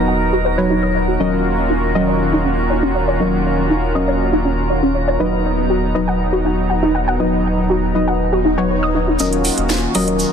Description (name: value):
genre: progressive house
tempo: 120 BPM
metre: 4/4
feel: straight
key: Eb minor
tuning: A4 = 440 Hz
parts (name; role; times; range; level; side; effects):
- warm analog pad; sustained chords; 0.0-10.3 s; Eb3 to Gb4; -21 LUFS; right 1 dB; chorus
- deep mellow chord stab; stabs; 0.0-10.3 s; F#3 to D#5; -20 LUFS; left 2 dB; chorus, vintage 12-bit sampler grit, tape echo
- round analog bass; bass; 0.0-10.2 s; D#1; -22 LUFS; equal; none
- drifting glass-harmonics texture; texture; 0.0-9.2 s; Bb4 to Bb5; -26 LUFS; equal; chorus, built-in reverb
- soft round pluck; arpeggios; 0.1-10.1 s; Db4 to D#6; -20 LUFS; equal; ensemble chorus, tape echo
- swell; sound effects; 8.4-9.2 s; none; -29 LUFS; right 5 dB; none
- house drum kit; drums; 9.2-10.3 s; hi-hat, snare drum; -21 LUFS; right 3 dB; high-pass filter on hats, low-pass filter on hats, studio reverb, high-pass filter on snare, low-pass filter on snare
- vintage brush drum kit; drums; 9.2-10.3 s; hi-hat, shaker, snare drum; -28 LUFS; right 1 dB; high-pass filter on hats, studio reverb, high-pass filter on snare, high-pass filter on perc, high-pass filter on room
room: moderate lush hall reverb, RT60 2.1 s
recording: dense, heavily limited modern master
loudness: -14 LUFS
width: side -7 dB against mid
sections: 0.0-9.2 A section; 9.2-10.3 B section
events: filter sweep on synth pluck 0.0-9.2; swell 8.4-9.2; build-up 9.2-10.3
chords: 0.0 B/D#; 1.2 Ebm7; 5.2 B/D#; 9.2 Ebm7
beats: 0.20 0.70 | 1.20 1.70 2.20 2.70 | 3.20 3.70 4.20 4.70 | 5.20 5.70 6.20 6.70 | 7.20 7.70 8.20 8.70 | 9.20 9.70 10.20